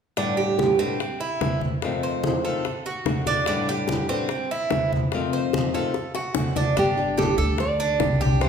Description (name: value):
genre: latin, Cuban son and guajira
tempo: 145 BPM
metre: 4/4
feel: straight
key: G major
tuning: A4 = 440 Hz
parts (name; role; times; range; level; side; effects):
- flamenco guitar; accompaniment; 0.2-8.5 s; F2 to G4; -28 LUFS; left 4 dB; none
- Cuban tres; arpeggios; 0.2-8.5 s; C4 to C5; -26 LUFS; right 4 dB; none
- bongos; percussion; 0.2-8.5 s; none; -30 LUFS; left 7 dB; none
- congas; percussion; 0.2-8.5 s; none; -28 LUFS; equal; none
- nylon-string guitar; melody; 6.8-8.5 s; G4 to D5; -25 LUFS; right 1 dB; none
- upright bass; bass; 6.8-8.5 s; G1 to D2; -26 LUFS; equal; none
room: wet recital hall reverb, RT60 1.5 s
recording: recorded in a church or concert hall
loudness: -21 LUFS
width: side -7 dB against mid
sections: 0.2-6.8 A section; 6.8-8.5 B section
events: drum fill 5.9-6.8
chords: 0.2 Gadd9; 1.0 C; 1.8 F7; 2.6 D7; 3.5 Gadd9; 4.3 C; 5.1 F7; 5.9 D7; 6.8 Gsus2